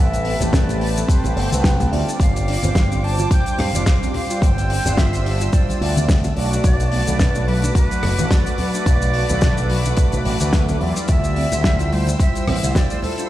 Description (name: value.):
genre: nu-disco, nu disco.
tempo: 108 BPM.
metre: 4/4.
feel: swing 56% on 16ths.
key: unclear.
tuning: A4 = 441 Hz.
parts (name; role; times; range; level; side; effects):
jazz flute; melody; 0.0-13.3 s; A4 to A5; -27 LUFS; right 2 dB; tape echo.
mellow synth brass; accompaniment; 0.0-13.3 s; G3 to D5; -26 LUFS; equal; chorus, sidechain pumping, tape echo.
warm symphonic violin section; sustained chords; 0.0-13.3 s; C4 to E6; -31 LUFS; left 1 dB; sidechain pumping.
soft round pluck; arpeggios; 0.0-13.2 s; F#3 to F4; -30 LUFS; right 2 dB; lush chorus, sidechain pumping, tape echo.
picked electric bass with an envelope filter; bass; 0.0-12.7 s; F1 to G2; -20 LUFS; equal; none.
damped 70s drum kit; drums; 0.1-13.3 s; hi-hat, rim click, shaker, snare drum; -26 LUFS; left 1 dB; none.
congas; percussion; 0.4-13.2 s; none; -26 LUFS; left 2 dB; none.
electronic kick drum; drums; 0.5-12.9 s; none; -17 LUFS; equal; none.
room: studio reverb.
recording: played on a big sound system in a bare room, stone room reverb.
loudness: -16 LUFS.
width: side -14 dB against mid.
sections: 0.0-13.3 A section.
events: none.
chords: 0.0 Am9; 2.2 G7sus4; 6.4 Bm7; 11.1 Dm11.